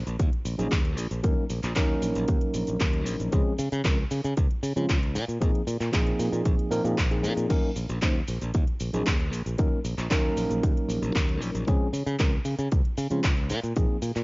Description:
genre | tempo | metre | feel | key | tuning
nu-disco, nu disco | 115 BPM | 4/4 | straight | Eb dorian | A4 = 438 Hz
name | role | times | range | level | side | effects
modern bright fingered electric bass | bass | 0.0-14.2 s | Bb1 to Db3 | -29 LUFS | equal | none
house drum kit | drums | 0.1-14.2 s | cabasa, crash cymbal, handclaps, hi-hat | -34 LUFS | equal | studio reverb, cassette tape
electronic kick drum | drums | 0.2-13.9 s | none | -24 LUFS | equal | studio reverb, cassette tape
mellow tine electric piano | accompaniment | 0.6-14.0 s | F3 to C5 | -29 LUFS | equal | auto-pan, sidechain pumping, cassette tape, analog delay
room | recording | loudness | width
digital ambience | home recording on cassette, nothing above 7.5 kHz | -24 LUFS | side -25 dB against mid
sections
0.0-14.2 A section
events
none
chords
0.0 Ebm7; 3.3 Dbmaj7; 5.2 Bb9sus4; 7.5 Ebm7; 11.7 Dbmaj7; 13.5 Bb9sus4

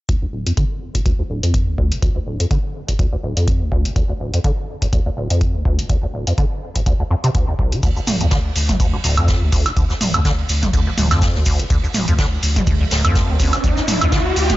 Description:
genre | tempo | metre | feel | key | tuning
acid house | 124 BPM | 4/4 | swing 56% on 16ths | D minor | A4 = 439 Hz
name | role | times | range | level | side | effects
liquid acid bass | riff | 0.1-14.6 s | D1 to D3 | -20 LUFS | equal | chorus, sidechain pumping, tape echo
electro analog drum machine | drums | 0.1-14.6 s | hi-hat, toms, woodblock | -22 LUFS | right 1 dB | none
electronic kick drum | drums | 0.1-14.6 s | none | -19 LUFS | equal | none
saturated sub bass | bass | 7.8-14.5 s | D2 | -20 LUFS | equal | sidechain pumping
jazz brush drum kit | drums | 7.8-14.6 s | hi-hat, ride cymbal, snare drum | -28 LUFS | right 2 dB | sidechain pumping on cymbals, high-pass filter on cymbals, sidechain pumping on hats, high-pass filter on hats, high-pass filter on snare, high-pass filter on room
cabasa | percussion | 7.8-14.6 s | none | -30 LUFS | right 2 dB | none
riser | sound effects | 12.4-14.6 s | none | -22 LUFS | equal | none
room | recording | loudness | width
little or no reverb | nothing above 7.6 kHz | -16 LUFS | side -16 dB against mid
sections
0.1-14.6 A section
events
filter sweep on acid bass 0.1-14.6; riser 12.4-14.6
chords
0.1 Dm

